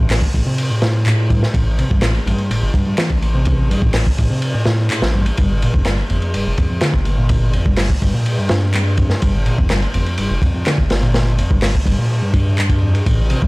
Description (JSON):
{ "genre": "breakbeat, breaks", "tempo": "125 BPM", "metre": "4/4", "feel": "straight", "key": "unclear", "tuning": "A4 = 440 Hz", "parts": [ { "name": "hollow-body short-scale picked electric bass", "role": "riff", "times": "0.0-13.5 s", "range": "F2 to E3", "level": "-19 LUFS", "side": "equal", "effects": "overdrive, vintage 12-bit sampler grit, ping-pong delay" }, { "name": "saturated sub bass", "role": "bass", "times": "0.0-13.5 s", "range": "F1 to A2", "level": "-18 LUFS", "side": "equal", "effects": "none" }, { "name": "crunchy breakbeat drum kit", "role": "drums", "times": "0.1-13.5 s", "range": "hi-hat, kick drum, ride cymbal, snare drum", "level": "-18 LUFS", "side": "equal", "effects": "none" }, { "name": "electronic handclaps", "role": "drums", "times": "0.1-12.7 s", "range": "none", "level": "-24 LUFS", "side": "equal", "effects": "overdrive" } ], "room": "little or no reverb", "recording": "vinyl crackle", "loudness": "-14 LUFS", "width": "side -23 dB against mid", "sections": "0.0-13.5 A section", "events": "none", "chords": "0.0 Am7; 5.4 Gm7" }